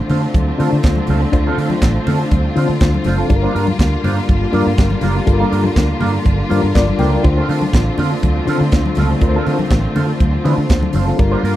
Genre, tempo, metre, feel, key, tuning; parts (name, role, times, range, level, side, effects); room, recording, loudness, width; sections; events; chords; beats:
disco; 122 BPM; 4/4; straight; D minor; A4 = 441 Hz
mellow electric guitar; accompaniment; 0.0-11.6 s; A3 to C5; -23 LUFS; right 4 dB; wah
reed electric piano; accompaniment; 0.0-11.6 s; D3 to G5; -20 LUFS; left 5 dB; fast tremolo
rich studio string section; sustained chords; 0.0-11.6 s; D3 to F4; -22 LUFS; right 1 dB
fingered electric bass; bass; 0.1-11.6 s; F#1 to D3; -18 LUFS; right 1 dB
tight funk drum kit; drums; 0.1-11.6 s; handclaps, hi-hat, kick drum, snare drum; -15 LUFS; right 1 dB
congas; percussion; 0.1-11.3 s; -24 LUFS; left 4 dB
little or no reverb; dry, close 1970s-style studio recording; -13 LUFS; side -14 dB against mid
0.0-11.6 A section
0.0 Dm7; 3.3 Gm7
0.34 0.83 | 1.33 1.82 2.31 2.81 | 3.30 3.79 4.29 4.78 | 5.27 5.77 6.26 6.75 | 7.25 7.74 8.23 8.73 | 9.22 9.71 10.21 10.70 | 11.19